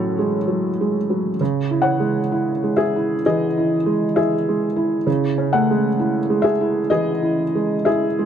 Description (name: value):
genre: neoclassical minimalist piano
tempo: 64 BPM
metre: 4/4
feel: rubato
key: C# minor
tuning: A4 = 440 Hz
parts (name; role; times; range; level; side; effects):
- felt-muted upright piano; solo; 0.0-8.3 s; A2 to F#5; -17 LUFS; right 1 dB; none
room: light reverb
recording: dark, warm production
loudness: -17 LUFS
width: side -8 dB against mid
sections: 0.0-8.3 A section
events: none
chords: 0.0 F#madd9/A; 1.4 C#madd9